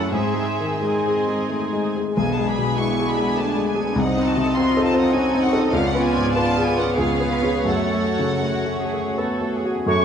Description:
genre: classical, romantic movement for piano and orchestra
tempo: 78-103 BPM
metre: 3/4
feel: rubato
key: F# minor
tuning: A4 = 440 Hz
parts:
  - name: clear grand piano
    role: melody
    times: 0.0-10.0 s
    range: B1 to A4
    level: -21 LUFS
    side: left 1 dB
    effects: none
  - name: dark studio violin section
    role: melody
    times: 0.0-9.2 s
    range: D#5 to C#6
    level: -28 LUFS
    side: left 2 dB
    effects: none
  - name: warm studio violin section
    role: second line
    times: 0.0-9.9 s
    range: G#3 to G#5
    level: -28 LUFS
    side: left 2 dB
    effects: none
  - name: warm studio viola section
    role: accompaniment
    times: 0.0-9.6 s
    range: A3 to G#4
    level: -28 LUFS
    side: right 3 dB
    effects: none
  - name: dark studio cello section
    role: bass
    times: 0.0-9.9 s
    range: C#4 to B4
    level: -28 LUFS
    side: right 5 dB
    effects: none
  - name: flute section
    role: second line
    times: 9.9-10.0 s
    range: C#6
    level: -20 LUFS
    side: left 2 dB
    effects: none
  - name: mellow clarinet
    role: second line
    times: 9.9-10.0 s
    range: F#4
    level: -26 LUFS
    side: right 1 dB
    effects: none
  - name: warm oboe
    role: second line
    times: 9.9-10.0 s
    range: C#5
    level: -25 LUFS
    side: right 3 dB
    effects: none
  - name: dark bassoon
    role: accompaniment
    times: 9.9-10.0 s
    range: A3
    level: -21 LUFS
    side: right 6 dB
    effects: none
  - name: dark French horn section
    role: sustained chords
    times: 9.9-10.0 s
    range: A3 to C#4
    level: -28 LUFS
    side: left 5 dB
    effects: none
room: moderate scoring stage reverb, RT60 1.8 s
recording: nothing above 10.6 kHz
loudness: -18 LUFS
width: side -8 dB against mid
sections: 0.0-9.9 A section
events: none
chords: 0.1 G#; 2.2 G#dim/B; 4.0 Cdim7; 5.7 C#7b9; 7.0 C#7; 7.7 F#m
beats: | 0.13 0.81 1.50 | 2.15 2.77 3.38 | 3.97 4.56 5.14 | 5.73 6.33 6.96 | 7.67 8.44 9.18 | 9.88

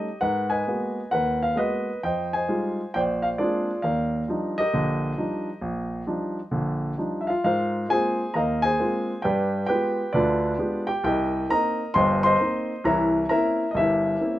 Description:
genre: solo jazz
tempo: 133 BPM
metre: 4/4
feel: swing 66% on 8ths, rubato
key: Eb major, Ab major from 7.5 s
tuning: A4 = 440 Hz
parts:
  - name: warm grand piano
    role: solo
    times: 0.0-14.4 s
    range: G1 to C6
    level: -22 LUFS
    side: equal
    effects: none
room: light reverb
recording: minimal, uncompressed stereo recording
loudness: -22 LUFS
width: side -14 dB against mid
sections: 0.0-7.5 A section; 7.5-14.4 B section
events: none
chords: 0.2 Abm9; 2.0 Fm9; 2.9 Bb9; 3.8 Ebmaj9; 7.5 Ab69; 9.3 G7b9; 11.1 Cm7; 12.9 C7b9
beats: | 0.22 0.67 1.13 1.58 | 2.03 2.48 2.94 3.38 | 3.83 4.28 4.73 5.17 | 5.62 6.07 6.53 6.99 | 7.45 7.91 8.36 8.81 | 9.26 9.71 10.15 10.60 | 11.05 11.50 11.95 12.40 | 12.86 13.31 13.76 14.22

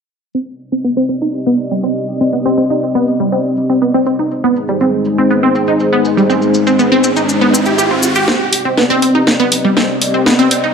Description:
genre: melodic techno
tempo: 121 BPM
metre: 4/4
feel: straight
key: C harmonic minor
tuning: A4 = 440 Hz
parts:
  - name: dark analog pad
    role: sustained chords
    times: 0.3-10.7 s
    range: Ab3 to Eb5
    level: -16 LUFS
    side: left 1 dB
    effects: chorus
  - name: wide unison pluck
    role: arpeggios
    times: 0.3-10.7 s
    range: G3 to G4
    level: -13 LUFS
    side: equal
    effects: phaser, tape echo
  - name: cabasa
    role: percussion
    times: 0.3-8.3 s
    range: none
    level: -21 LUFS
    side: left 3 dB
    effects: none
  - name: riser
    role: sound effects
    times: 5.9-10.7 s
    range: none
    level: -21 LUFS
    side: right 2 dB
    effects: none
  - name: techno drum kit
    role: drums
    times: 8.3-10.6 s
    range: hi-hat, snare drum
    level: -14 LUFS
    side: equal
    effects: none
room: moderate recital hall reverb, RT60 1.3 s, digital ambience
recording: low-pass filter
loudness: -11 LUFS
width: side -6 dB against mid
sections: 0.3-8.3 A section; 8.3-10.7 B section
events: filter sweep on synth pluck 0.3-8.3; filter sweep 0.3-8.3; riser 5.9-8.3, 8.3-10.7; build-up 8.3-10.7; drum fill 8.3-10.7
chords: 0.3 Cm; 4.3 Ab; 8.3 Cm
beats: | 0.35 0.84 1.34 1.83 | 2.33 2.83 3.32 3.82 | 4.31 4.81 5.30 5.80 | 6.30 6.79 7.29 7.78 | 8.28 8.78 9.27 9.77 | 10.26

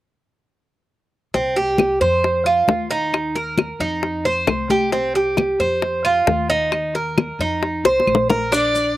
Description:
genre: latin, Cuban son and guajira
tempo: 134 BPM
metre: 4/4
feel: straight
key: unclear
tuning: A4 = 440 Hz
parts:
  - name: Cuban tres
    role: arpeggios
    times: 1.3-9.0 s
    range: C4 to C5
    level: -18 LUFS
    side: right 2 dB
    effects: none
  - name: upright bass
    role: bass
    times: 1.3-9.0 s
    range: Bb1 to F2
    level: -29 LUFS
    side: equal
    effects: none
  - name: bongos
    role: percussion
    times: 1.3-8.7 s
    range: none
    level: -21 LUFS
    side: left 5 dB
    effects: slapback echo
  - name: congas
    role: percussion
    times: 1.3-9.0 s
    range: none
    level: -25 LUFS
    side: left 3 dB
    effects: none
  - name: claves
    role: percussion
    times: 1.8-8.3 s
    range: none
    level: -28 LUFS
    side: left 4 dB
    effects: none
  - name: rich violin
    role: melody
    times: 8.5-9.0 s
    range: D5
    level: -19 LUFS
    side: left 1 dB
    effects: none
  - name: maracas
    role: percussion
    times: 8.5-9.0 s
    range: none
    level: -29 LUFS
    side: left 3 dB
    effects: none
room: light reverb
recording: recorded outdoors, with no room sound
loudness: -17 LUFS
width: side -14 dB against mid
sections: 1.3-8.5 A section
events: drum fill 7.8-8.5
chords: 1.3 C5; 2.2 F5; 3.1 Ebsus2; 4.0 F5; 4.9 C5; 5.8 F5; 6.7 Ebsus2; 7.6 F5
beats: | 1.34 1.79 2.24 2.69 | 3.14 3.58 4.03 4.48 | 4.93 5.38 5.83 6.28 | 6.73 7.17 7.62 8.07 | 8.52 8.97

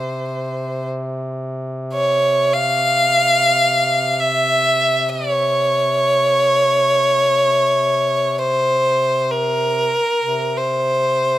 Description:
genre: caucasian folk, Caucasian lament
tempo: free time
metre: none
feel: none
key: unclear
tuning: A4 = 441 Hz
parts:
  - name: clear violin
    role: melody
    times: 0.0-11.4 s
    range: Bb4 to F5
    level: -15 LUFS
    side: equal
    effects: none
  - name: warm duduk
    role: drone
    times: 0.0-11.4 s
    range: C3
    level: -26 LUFS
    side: equal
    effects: none
room: light reverb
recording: close, detailed microphones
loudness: -15 LUFS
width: side -13 dB against mid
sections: 0.0-11.4 A section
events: none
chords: none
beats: free time

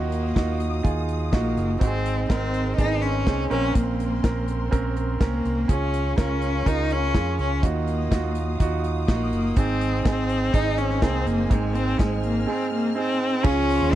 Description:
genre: piano-driven pop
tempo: 124 BPM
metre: 4/4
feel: straight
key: unclear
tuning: A4 = 440 Hz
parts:
  - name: rich cello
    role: melody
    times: 0.0-13.9 s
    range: Ab3 to Eb4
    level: -26 LUFS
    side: left 2 dB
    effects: none
  - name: clear concert grand piano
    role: accompaniment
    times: 0.0-14.0 s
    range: Ab2 to Bb4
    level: -27 LUFS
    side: right 6 dB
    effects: none
  - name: warm studio string section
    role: sustained chords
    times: 0.0-14.0 s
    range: Gb3 to F6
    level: -38 LUFS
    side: left 3 dB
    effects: none
  - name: vintage muted fingered electric bass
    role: bass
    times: 0.0-14.0 s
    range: Gb1 to F2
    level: -26 LUFS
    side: equal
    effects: none
  - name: modern studio drum kit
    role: drums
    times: 0.1-13.8 s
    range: crash cymbal, hi-hat, kick drum, snare drum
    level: -22 LUFS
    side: equal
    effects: none
  - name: warm French horn section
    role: second line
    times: 13.5-14.0 s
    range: F3 to F4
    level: -31 LUFS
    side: left 9 dB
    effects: none
room: little or no reverb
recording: dry, close 1970s-style studio recording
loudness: -21 LUFS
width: side -13 dB against mid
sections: 0.0-13.4 A section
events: none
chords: 0.0 Ebmadd9; 1.8 Ab; 3.5 Bbmadd9; 5.7 Db; 7.6 Ebmadd9; 9.6 Ab; 13.4 Db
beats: 0.36 0.85 1.33 | 1.81 2.30 2.78 3.27 | 3.75 4.24 4.72 5.21 | 5.69 6.18 6.66 7.14 | 7.63 8.11 8.60 9.08 | 9.57 10.05 10.54 11.02 | 11.51 11.99 12.48 12.96 | 13.45 13.93

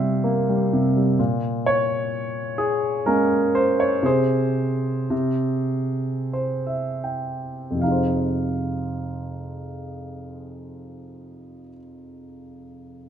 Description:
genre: classical, lyrical solo piano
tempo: 35-66 BPM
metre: 3/4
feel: rubato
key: F minor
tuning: A4 = 440 Hz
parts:
  - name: warm grand piano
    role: solo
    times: 0.0-13.1 s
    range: F2 to G5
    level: -22 LUFS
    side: equal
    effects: none
room: moderate recital hall reverb, RT60 1.5 s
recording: none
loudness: -20 LUFS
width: side -9 dB against mid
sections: 0.0-1.2 A section; 1.2-7.8 B section; 7.8-12.5 C section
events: slowing down 1.2-7.8; grand piano fill 5.7-7.8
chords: 0.0 C7; 1.2 Bbm7; 4.0 Ab/C; 7.8 Fm7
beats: 0.22 | 1.18 2.11 3.05 | 4.04 5.12 6.33 | 7.82 9.44 10.97

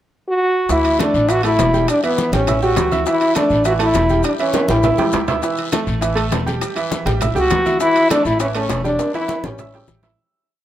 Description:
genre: latin, salsa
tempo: 202 BPM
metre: 4/4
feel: straight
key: unclear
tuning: A4 = 440 Hz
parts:
  - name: clear French horn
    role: melody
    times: 0.3-5.2, 7.4-9.9 s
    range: B3 to F#4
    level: -16 LUFS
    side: equal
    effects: none
  - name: bright upright piano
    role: accompaniment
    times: 0.7-10.2 s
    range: E3 to E6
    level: -22 LUFS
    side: right 4 dB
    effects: none
  - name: upright bass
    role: bass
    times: 0.7-10.1 s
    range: E1 to D2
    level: -22 LUFS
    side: equal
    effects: none
  - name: bongos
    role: percussion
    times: 0.7-10.2 s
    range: none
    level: -28 LUFS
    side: left 8 dB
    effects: none
  - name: congas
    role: percussion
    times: 0.7-10.2 s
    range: none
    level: -27 LUFS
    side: left 2 dB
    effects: none
  - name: guiro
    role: percussion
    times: 0.7-10.2 s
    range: none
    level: -34 LUFS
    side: left 7 dB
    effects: none
  - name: maracas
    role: percussion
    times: 0.7-10.2 s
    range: none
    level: -35 LUFS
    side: left 6 dB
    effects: none
  - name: timbales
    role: percussion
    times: 0.8-10.1 s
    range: none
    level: -27 LUFS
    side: right 5 dB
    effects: none
room: moderate plate reverb, RT60 2.8 s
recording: none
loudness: -14 LUFS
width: side -12 dB against mid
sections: 0.0-0.7 pickup bar; 0.7-10.2 montuno (vamp)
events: drum fill 4.5-5.4, 9.0-10.2; fade-out 8.3-10.2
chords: 0.0 N.C.; 0.7 Dsus2; 1.3 A5; 1.9 Em; 2.5 A5; 3.1 Dsus2; 3.7 A5; 4.2 Em; 4.8 A7; 5.4 A5; 6.6 Em; 7.2 A7; 7.8 Asus4; 8.4 A7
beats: 0.10 0.40 | 0.69 0.99 1.29 1.58 | 1.88 2.18 2.47 2.77 | 3.06 3.36 3.65 3.95 | 4.25 4.54 4.84 5.13 | 5.43 5.73 6.02 6.32 | 6.62 6.91 7.21 7.51 | 7.80 8.10 8.40 8.70 | 8.99 9.29 9.58 9.88

